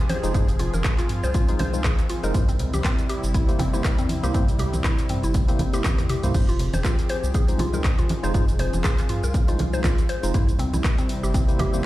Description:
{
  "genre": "afro house",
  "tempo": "120 BPM",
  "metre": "4/4",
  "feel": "swing 56% on 16ths",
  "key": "F minor",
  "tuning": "A4 = 437 Hz",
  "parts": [
    { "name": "warm analog pad", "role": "sustained chords", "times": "0.0-11.9 s", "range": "C3 to Ab4", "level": "-31 LUFS", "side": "left 1 dB", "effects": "chorus, sidechain pumping" },
    { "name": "round analog bass", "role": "bass", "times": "0.0-11.8 s", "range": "F1 to E2", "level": "-26 LUFS", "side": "equal", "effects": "sidechain pumping" },
    { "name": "mallet-like synth pluck", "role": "arpeggios", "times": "0.1-11.7 s", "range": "C4 to C5", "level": "-30 LUFS", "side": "equal", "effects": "chorus, sidechain pumping, tape echo" },
    { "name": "house drum kit", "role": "drums", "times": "0.1-11.8 s", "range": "cabasa, crash cymbal, handclaps, hi-hat, rim click, toms", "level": "-30 LUFS", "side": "equal", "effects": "small room ambience" },
    { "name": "congas", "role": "percussion", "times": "0.1-11.8 s", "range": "none", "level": "-29 LUFS", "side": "right 1 dB", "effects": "none" },
    { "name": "bright tine electric piano", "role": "stabs", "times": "0.2-11.8 s", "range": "Ab3 to C5", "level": "-32 LUFS", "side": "equal", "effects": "medium stereo tremolo, vintage 12-bit sampler grit, sidechain pumping, tape echo" },
    { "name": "electronic kick drum", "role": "drums", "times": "0.3-11.5 s", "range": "none", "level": "-22 LUFS", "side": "equal", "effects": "small room ambience" }
  ],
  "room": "little or no reverb",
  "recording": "played on a big sound system in a bare room, large studio reverb",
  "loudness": "-20 LUFS",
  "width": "side -16 dB against mid",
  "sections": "0.0-11.9 A section",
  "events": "drum fill 5.8-6.3",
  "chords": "0.0 Fm7; 2.3 C7; 6.3 Fm7; 10.3 C7"
}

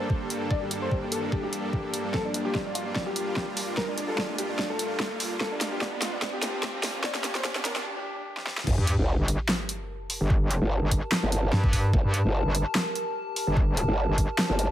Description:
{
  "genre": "heavy wobble dubstep",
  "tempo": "147 BPM",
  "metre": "4/4",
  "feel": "swing 54% on 16ths, half-time",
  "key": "G minor",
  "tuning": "A4 = 441 Hz",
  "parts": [
    { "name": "warm concert grand piano", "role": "melody", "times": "0.0-8.6 s", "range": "D4 to D5", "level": "-33 LUFS", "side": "left 1 dB", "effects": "digital delay" },
    { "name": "supersaw pad", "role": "sustained chords", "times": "0.0-7.8 s", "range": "G2 to A4", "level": "-34 LUFS", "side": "right 1 dB", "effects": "sidechain pumping" },
    { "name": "riser and sub drop", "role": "sound effects", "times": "0.0-10.3 s", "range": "none", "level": "-35 LUFS", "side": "equal", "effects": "none" },
    { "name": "warbly tape-like pad", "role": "texture", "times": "0.0-14.7 s", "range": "Bb3 to A5", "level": "-36 LUFS", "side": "equal", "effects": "chorus, built-in reverb, sidechain pumping" },
    { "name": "electronic kick drum", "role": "drums", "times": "0.1-14.3 s", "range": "none", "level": "-26 LUFS", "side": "equal", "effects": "overdrive" },
    { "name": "big-room dance drum kit", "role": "drums", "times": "0.3-14.7 s", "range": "crash cymbal, handclaps, hi-hat, snare drum", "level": "-29 LUFS", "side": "equal", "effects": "overdrive" },
    { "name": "growl bass", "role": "bass", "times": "8.7-14.7 s", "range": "G1", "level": "-25 LUFS", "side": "equal", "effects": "chorus, overdrive" },
    { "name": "metallic wobble bass", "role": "bass", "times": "8.8-14.3 s", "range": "G1 to G2", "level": "-25 LUFS", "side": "equal", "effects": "distortion, chorus, overdrive" }
  ],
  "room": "light reverb, digital ambience",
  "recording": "high-pass filter",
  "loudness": "-25 LUFS",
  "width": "side -12 dB against mid",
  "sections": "0.0-8.7 A section; 8.7-14.7 B section",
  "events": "build-up 0.0-8.7; riser 0.0-7.9; filter sweep 0.0-8.7; drum fill 2.1-7.9, 8.4-8.7; break 7.9-8.7; drop 8.7-14.7; impact 8.7-10.3",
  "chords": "0.0 Gmadd9"
}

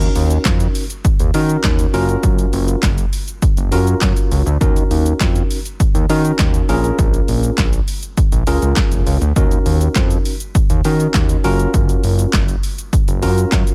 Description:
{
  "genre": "dance-pop",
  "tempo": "101 BPM",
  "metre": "4/4",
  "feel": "straight",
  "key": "unclear",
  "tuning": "A4 = 440 Hz",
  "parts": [
    { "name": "tine electric piano", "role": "accompaniment", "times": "0.0-13.7 s", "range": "Db4 to Bb4", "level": "-23 LUFS", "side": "equal", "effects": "overdrive, sidechain pumping" },
    { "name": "fat analog bass", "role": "bass", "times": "0.0-13.6 s", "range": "F1 to Eb3", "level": "-19 LUFS", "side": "equal", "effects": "sidechain pumping" },
    { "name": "house drum kit", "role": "drums", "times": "0.0-13.7 s", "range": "handclaps, hi-hat, kick drum, shaker, snare drum", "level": "-18 LUFS", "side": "equal", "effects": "none" }
  ],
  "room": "digital ambience",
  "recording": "none",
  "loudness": "-16 LUFS",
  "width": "mono",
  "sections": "0.0-13.7 A section",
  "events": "none",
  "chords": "0.0 Ebm7; 1.9 Gbmaj7; 4.6 Ebm7; 6.7 Bbm7; 9.4 Ebm7; 11.4 Gbmaj7"
}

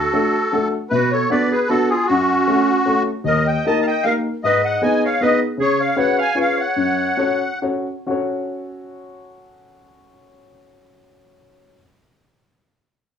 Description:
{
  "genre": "musette waltz",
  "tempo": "129-157 BPM",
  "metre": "3/4",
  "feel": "swing 53% on 8ths",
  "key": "F# harmonic minor",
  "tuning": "A4 = 440 Hz",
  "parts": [
    { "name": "musette accordion", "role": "melody", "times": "0.0-7.6 s", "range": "F#4 to A5", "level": "-19 LUFS", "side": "left 2 dB", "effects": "none" },
    { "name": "clear clarinet", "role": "second line", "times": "0.0-7.6 s", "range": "C#4 to E#5", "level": "-22 LUFS", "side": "right 3 dB", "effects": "none" },
    { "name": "dark upright piano", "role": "accompaniment", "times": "0.0-11.8 s", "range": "D#2 to C#5", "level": "-21 LUFS", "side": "left 2 dB", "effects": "none" }
  ],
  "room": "moderate small room reverb, RT60 0.5 s",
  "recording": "studio ambience",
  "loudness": "-16 LUFS",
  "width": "side -8 dB against mid",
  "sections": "0.0-8.1 A section; 8.1-10.8 B section",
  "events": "slowing down 5.6-8.1",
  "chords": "0.0 D; 0.9 Bm7; 2.1 F#m; 3.3 D#; 4.4 G#m; 5.6 C#7sus4; 6.4 C#7; 6.8 F#m"
}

